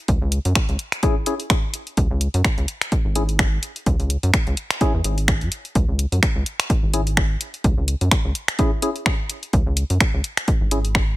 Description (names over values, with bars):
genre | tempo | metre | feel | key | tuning
minimal techno | 127 BPM | 4/4 | swing 56% on 16ths | C# minor | A4 = 440 Hz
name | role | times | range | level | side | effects
rubbery square bass | bass | 0.1-11.1 s | G#1 to F#2 | -21 LUFS | equal | sidechain pumping
electronic kick drum | drums | 0.1-11.1 s | none | -20 LUFS | equal | none
punchy analog drum machine | drums | 0.1-11.1 s | finger snaps, hi-hat | -23 LUFS | equal | none
percussive organ stab | stabs | 1.0-10.8 s | C#4 to G#4 | -26 LUFS | left 2 dB | chorus, vintage 12-bit sampler grit, ping-pong delay
room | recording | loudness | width
digital ambience | none | -18 LUFS | side -17 dB against mid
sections
0.0-5.8 A section; 5.8-11.2 B section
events
drop 5.8-11.2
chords
0.0 C#m